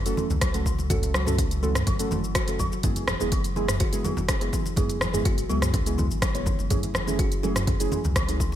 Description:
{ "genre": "afro house", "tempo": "124 BPM", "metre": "4/4", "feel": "straight", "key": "unclear", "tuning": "A4 = 439 Hz", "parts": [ { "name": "warm sub bass", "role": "bass", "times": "0.0-8.6 s", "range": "F#1 to C#2", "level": "-30 LUFS", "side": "equal", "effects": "sidechain pumping" }, { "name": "deep mellow chord stab", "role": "stabs", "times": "0.1-8.4 s", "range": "G#3 to C#5", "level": "-30 LUFS", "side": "right 2 dB", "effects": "chorus, sidechain pumping, ping-pong delay" }, { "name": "afro-pop drum kit", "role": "drums", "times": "0.1-8.6 s", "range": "hi-hat, rim click, shaker, toms", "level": "-29 LUFS", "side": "equal", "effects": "studio reverb, gated reverb" }, { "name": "kalimba", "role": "arpeggios", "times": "0.2-8.5 s", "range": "E3 to F#4", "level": "-32 LUFS", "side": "left 1 dB", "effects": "sidechain pumping, ping-pong delay" }, { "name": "congas", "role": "percussion", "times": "0.2-8.6 s", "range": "none", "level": "-34 LUFS", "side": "right 1 dB", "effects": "none" }, { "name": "electronic kick drum", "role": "drums", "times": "0.4-8.5 s", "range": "none", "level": "-27 LUFS", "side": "equal", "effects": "overdrive, studio reverb" } ], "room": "light reverb, digital ambience", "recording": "bright 1980s-style digital production", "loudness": "-22 LUFS", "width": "side -11 dB against mid", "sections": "0.0-8.6 A section", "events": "none", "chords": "0.0 F#m; 2.8 E/F#; 6.7 Amaj7/F#" }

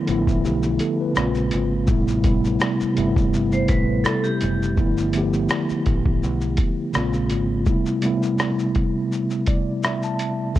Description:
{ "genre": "lo-fi hip hop", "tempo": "83 BPM", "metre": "4/4", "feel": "swing 56% on 16ths", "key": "A minor", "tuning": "A4 = 441 Hz", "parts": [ { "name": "mellow tine electric piano", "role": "accompaniment", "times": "0.0-10.6 s", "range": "C3 to A5", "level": "-21 LUFS", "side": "equal", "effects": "medium stereo tremolo, low-pass filter" }, { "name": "deep dub picked electric bass", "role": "bass", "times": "0.1-7.7 s", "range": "F#1 to B1", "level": "-25 LUFS", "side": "equal", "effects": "none" }, { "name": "lo-fi sampler-style drum kit", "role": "drums", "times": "0.1-10.6 s", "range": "hi-hat, kick drum, rim click, shaker", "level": "-23 LUFS", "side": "equal", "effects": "none" }, { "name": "vibraphone with hard mallets", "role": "second line", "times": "3.5-4.7 s", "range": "G4 to C5", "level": "-28 LUFS", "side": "equal", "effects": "low-pass filter, tape echo" } ], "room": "light reverb", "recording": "cassette tape", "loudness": "-19 LUFS", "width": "side -14 dB against mid", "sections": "0.0-4.8 A section; 4.8-10.6 B section", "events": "tine electric piano fill 9.1-10.6", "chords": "0.0 G13; 1.2 Bbm9; 1.9 Am9; 4.8 G13; 6.9 Bbm9; 7.7 Am9" }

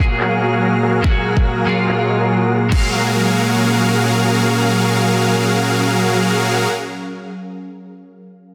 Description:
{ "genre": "future bass", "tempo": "143 BPM", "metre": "4/4", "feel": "swing 55% on 16ths, half-time", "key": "F# major", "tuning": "A4 = 440 Hz", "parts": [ { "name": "twelve-string electric guitar", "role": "accompaniment", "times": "0.0-6.7 s", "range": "A#2 to E#5", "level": "-20 LUFS", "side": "equal", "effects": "analog chorus, sidechain pumping, digital delay" }, { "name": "ethereal airy pad", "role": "sustained chords", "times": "0.1-6.7 s", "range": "F#3 to A#5", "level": "-29 LUFS", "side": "equal", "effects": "ensemble chorus, built-in reverb, phaser, sidechain pumping" }, { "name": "supersaw chords", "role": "riff", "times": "0.0-6.7 s", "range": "F#3 to G#5", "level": "-19 LUFS", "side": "equal", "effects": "sidechain pumping, low-pass filter, digital delay" }, { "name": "trap drum kit", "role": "drums", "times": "0.2-2.8 s", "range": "crash cymbal, handclaps", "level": "-29 LUFS", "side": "equal", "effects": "low-pass filter on snare, low-pass filter on cymbals" }, { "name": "electronic kick drum", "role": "drums", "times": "1.0-2.8 s", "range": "none", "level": "-18 LUFS", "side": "equal", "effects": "none" } ], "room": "moderate lush hall reverb, RT60 2.0 s, digital ambience", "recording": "dense, heavily limited modern master", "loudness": "-16 LUFS", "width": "mono", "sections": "0.0-2.7 A section; 2.7-6.1 B section", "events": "filter sweep on drum 0.0-2.7; filter sweep on supersaw synth 0.0-2.7", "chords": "0.0 F#maj9" }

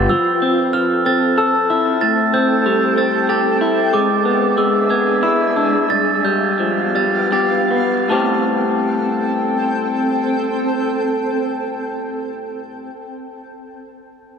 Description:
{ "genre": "rock", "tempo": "75-94 BPM", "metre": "3/4", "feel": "straight", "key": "A minor", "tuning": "A4 = 440 Hz", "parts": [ { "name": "shimmering ambient pad", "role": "sustained chords", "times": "0.0-12.9 s", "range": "G#3 to A5", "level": "-21 LUFS", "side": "right 1 dB", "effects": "chorus, built-in reverb" }, { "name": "electric guitar through a small old amp", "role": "arpeggios", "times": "0.0-12.9 s", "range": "G2 to A4", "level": "-18 LUFS", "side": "left 3 dB", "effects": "analog delay" }, { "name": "glockenspiel with rubber mallets", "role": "arpeggios", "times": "0.0-8.5 s", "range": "A5 to A6", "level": "-20 LUFS", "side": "right 4 dB", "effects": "analog delay" } ], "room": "wet concert hall reverb, RT60 1.9 s", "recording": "none", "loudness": "-15 LUFS", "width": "side -6 dB against mid", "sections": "0.0-8.1 A section; 8.1-12.9 B section", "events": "slowing down 3.9-8.1", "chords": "0.1 Fmaj7; 2.0 Am7; 3.9 E7/G#; 5.9 G7; 8.1 Am7" }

